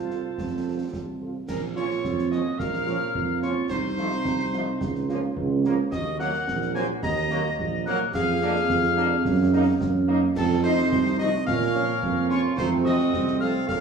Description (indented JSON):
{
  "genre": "military-style march for wind band",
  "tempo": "108 BPM",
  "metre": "2/4",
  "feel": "straight",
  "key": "Bb minor",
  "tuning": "A4 = 440 Hz",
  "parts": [
    { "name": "clear cornet", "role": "melody", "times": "0.0-13.8 s", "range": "A4 to Bb5", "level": "-33 LUFS", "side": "left 1 dB", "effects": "none" },
    { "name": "dark woodwind section", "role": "second line", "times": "0.0-13.8 s", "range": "C4 to Eb5", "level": "-32 LUFS", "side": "right 1 dB", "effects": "none" },
    { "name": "wooden piccolo", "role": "second line", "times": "0.0-13.8 s", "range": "A5 to Bb6", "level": "-31 LUFS", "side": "left 6 dB", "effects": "none" },
    { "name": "mellow trombone section", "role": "sustained chords", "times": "0.0-13.8 s", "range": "F3 to F4", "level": "-33 LUFS", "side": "right 2 dB", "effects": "none" },
    { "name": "mellow tuba", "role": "bass", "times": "0.0-13.8 s", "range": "Bb1 to Bb2", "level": "-24 LUFS", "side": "right 4 dB", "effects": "none" },
    { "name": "warm French horn section", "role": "accompaniment", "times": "0.1-13.5 s", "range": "F3 to A4", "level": "-34 LUFS", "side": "left 2 dB", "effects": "none" },
    { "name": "concert snare drum, concert bass drum and clash cymbals", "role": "drums", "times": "0.1-13.8 s", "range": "none", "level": "-34 LUFS", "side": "right 1 dB", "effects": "none" }
  ],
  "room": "wet large studio reverb, RT60 1.3 s",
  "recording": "heard from further back in the room",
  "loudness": "-22 LUFS",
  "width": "side -6 dB against mid",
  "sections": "0.0-1.5 A section; 1.5-13.8 B section",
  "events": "none",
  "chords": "0.0 F; 1.5 Bbm; 3.7 F7/C; 4.8 Bbm/Db; 5.9 Ebm; 8.1 Bb7/F; 9.2 Ebm/Gb; 10.4 F7; 11.5 Bbm; 12.6 F7"
}